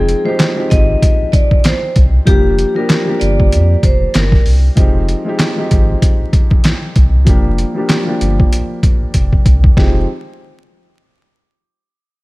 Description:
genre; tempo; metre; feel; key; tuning
hip hop, boom-bap hip-hop; 96 BPM; 4/4; swing 58% on 16ths; F dorian; A4 = 440 Hz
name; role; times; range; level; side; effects
vibraphone with medium hard mallets; melody; 0.0-4.4 s; G4 to Eb5; -19 LUFS; equal; high-pass filter, low-pass filter, ping-pong delay
warm upright piano; accompaniment; 0.0-10.1 s; F3 to G5; -19 LUFS; equal; high-pass filter, low-pass filter
warm sub bass; bass; 0.0-10.1 s; F1 to F2; -13 LUFS; equal; none
trip hop sampler-style drum kit; drums; 0.1-9.9 s; handclaps, hi-hat, kick drum, snare drum; -12 LUFS; equal; overdrive
room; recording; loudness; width
little or no reverb; vinyl crackle; -10 LUFS; side -21 dB against mid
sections
0.0-4.8 A section; 4.8-9.8 B section; 9.8-12.2 C section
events
filter sweep on upright piano 4.8-9.8; drum fill 9.1-9.8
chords
0.0 Fm7; 2.3 Gm7/F; 4.8 Fm7; 7.3 Gm7/F; 9.8 Fm7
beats
0.40 1.02 1.65 | 2.27 2.90 3.52 4.14 | 4.77 5.39 6.02 6.64 | 7.27 7.89 8.52 9.14 | 9.77

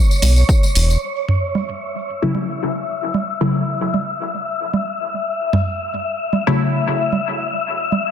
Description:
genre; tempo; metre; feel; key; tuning
dub techno; 113 BPM; 4/4; swing 53% on 16ths; F# minor; A4 = 442 Hz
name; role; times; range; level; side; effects
wind-like tuned noise texture; texture; 0.0-8.1 s; C#5 to E5; -23 LUFS; left 3 dB; built-in reverb, sidechain pumping
tambourine; percussion; 0.1-1.0 s; none; -25 LUFS; left 5 dB; none
round analog bass; bass; 0.2-1.0 s; E1 to B1; -12 LUFS; equal; sidechain pumping
electronic hi-hat; drums; 0.2-0.9 s; none; -23 LUFS; right 4 dB; low-pass filter on hats
electronic congas and toms; percussion; 0.2-8.0 s; none; -22 LUFS; right 3 dB; overdrive, sidechain pumping on perc, sidechain pumping on toms, dub echo
electronic kick drum; drums; 0.5-0.6 s; none; -14 LUFS; equal; overdrive
filtered dub chord stab; stabs; 2.2-6.8 s; C#3 to E4; -21 LUFS; left 2 dB; phaser, sidechain pumping, dub echo
room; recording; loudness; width
moderate echo chamber reverb, RT60 1.3 s; dense, heavily limited modern master; -17 LUFS; side -9 dB against mid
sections
0.0-1.0 A section; 1.0-8.1 B section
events
filter sweep on synth stab 1.0-8.1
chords
0.0 E5; 1.0 F#m7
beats
0.49 | 1.02 1.55 2.08 2.61 | 3.14 3.67 4.21 4.74 | 5.27 5.80 6.33 6.86 | 7.39 7.92

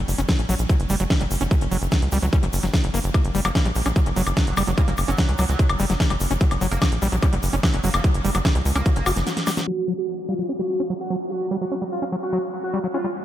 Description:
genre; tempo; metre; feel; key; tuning
psychedelic trance; 147 BPM; 4/4; straight; F# major; A4 = 440 Hz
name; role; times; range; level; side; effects
tight sequencer bass; bass; 0.0-9.2 s; F#1 to C#2; -23 LUFS; equal; none
big-room dance drum kit; drums; 0.1-9.7 s; hi-hat, snare drum, woodblock; -27 LUFS; left 1 dB; studio reverb
tube shaker; percussion; 0.1-9.7 s; none; -38 LUFS; left 3 dB; none
overdriven acid bass; riff; 0.2-13.1 s; F#3 to F#4; -27 LUFS; moving between left 5 dB and right 4 dB; auto-pan, sidechain pumping, ping-pong delay
electronic kick drum; drums; 0.3-8.9 s; none; -20 LUFS; equal; studio reverb
metallic wobble bass; second line; 3.5-9.1 s; F#3 to A#3; -35 LUFS; right 3 dB; lush chorus, sidechain pumping, high-pass filter, analog delay
overdriven synth lead; melody; 9.7-13.1 s; E#4 to F#4; -26 LUFS; right 1 dB; chorus, phaser, sidechain pumping, analog delay
riser; sound effects; 13.0-13.2 s; none; -42 LUFS; right 7 dB; none
room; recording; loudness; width
light reverb; low-pass filter; -19 LUFS; side -12 dB against mid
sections
0.0-9.7 A section; 9.7-13.2 B section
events
break 9.3-9.7; drum fill 9.3-9.7; filter sweep on acid bass 9.7-13.2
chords
0.0 F#5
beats
0.29 0.69 1.10 | 1.51 1.92 2.33 2.74 | 3.14 3.55 3.96 4.37 | 4.78 5.18 5.59 6.00 | 6.41 6.82 7.22 7.63 | 8.04 8.45 8.86 9.27 | 9.67 10.08 10.49 10.90 | 11.31 11.71 12.12 12.53 | 12.94

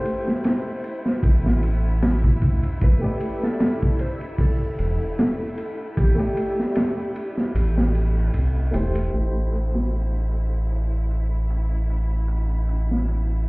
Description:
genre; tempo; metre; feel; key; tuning
trip hop; 76 BPM; 4/4; swing 55% on 16ths; A minor; A4 = 440 Hz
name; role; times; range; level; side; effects
electric slide guitar; melody; 0.0-8.3 s; G4 to C5; -31 LUFS; equal; tape echo
dark upright piano; accompaniment; 0.0-13.5 s; A3 to E5; -30 LUFS; equal; tremolo, tape echo
warm studio string section; sustained chords; 0.0-13.5 s; E4; -37 LUFS; left 1 dB; vintage 12-bit sampler grit
backwards swelling texture; texture; 0.0-9.2 s; E4 to E5; -44 LUFS; right 2 dB; none
crunchy breakbeat drum kit; drums; 0.1-13.3 s; hi-hat, kick drum, ride cymbal, snare drum; -25 LUFS; equal; low-pass filter on kick, low-pass filter on cymbals, low-pass filter on hats, low-pass filter on snare, low-pass filter on room
egg shaker; percussion; 0.1-9.1 s; none; barely audible; none; none
round analog bass; bass; 1.2-13.5 s; E1 to D2; -20 LUFS; equal; none
room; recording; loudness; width
small room ambience; heard muffled through a wall, club reverb, EQ; -20 LUFS; side -26 dB against mid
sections
0.0-9.1 A section; 9.1-13.5 B section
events
kick drops out 7.5-9.1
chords
0.0 Am7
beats
0.45 1.23 2.02 | 2.81 3.60 4.39 5.18 | 5.97 6.76 7.55 8.34 | 9.13 9.92 10.71 11.50 | 12.29 13.08

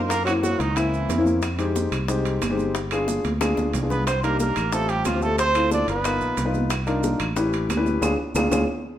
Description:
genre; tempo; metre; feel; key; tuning
Afro-Cuban jazz; 182 BPM; 4/4; straight; unclear; A4 = 440 Hz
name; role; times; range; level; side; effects
warm grand piano; accompaniment; 0.0-8.6 s; Ab3 to B4; -25 LUFS; left 2 dB; none
fingered electric bass; bass; 0.0-8.6 s; G1 to F#2; -27 LUFS; equal; none
clear trumpet; melody; 0.1-1.3, 3.9-6.5 s; Eb4 to D5; -25 LUFS; right 4 dB; none
breathy tenor saxophone; second line; 0.1-1.3, 3.9-6.5 s; Eb3 to D4; -30 LUFS; left 3 dB; none
bongos; percussion; 0.1-8.6 s; none; -34 LUFS; left 4 dB; none
congas; percussion; 0.1-8.6 s; none; -31 LUFS; equal; none
maracas; percussion; 0.1-8.6 s; none; -38 LUFS; right 6 dB; none
timbales; percussion; 0.1-8.6 s; none; -33 LUFS; right 6 dB; none
claves; percussion; 0.3-8.6 s; none; -34 LUFS; equal; none
room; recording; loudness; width
wet large studio reverb, RT60 1.4 s; band playing live in one room; -20 LUFS; side -11 dB against mid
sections
0.0-9.0 A section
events
drum fill 3.2-4.1, 8.7-9.0; band accent 8.0-9.0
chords
0.1 F#7#11; 1.4 Fm9; 2.7 G7b9; 4.1 Cm9; 4.7 A7alt; 5.4 Dm7; 6.0 G7alt; 6.7 Cm11; 7.4 A7; 8.0 Ddim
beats
| 0.10 0.43 0.76 1.09 | 1.43 1.75 2.08 2.42 | 2.75 3.08 3.41 3.74 | 4.07 4.40 4.73 5.06 | 5.39 5.72 6.05 6.38 | 6.71 7.04 7.37 7.70 | 8.03 8.36

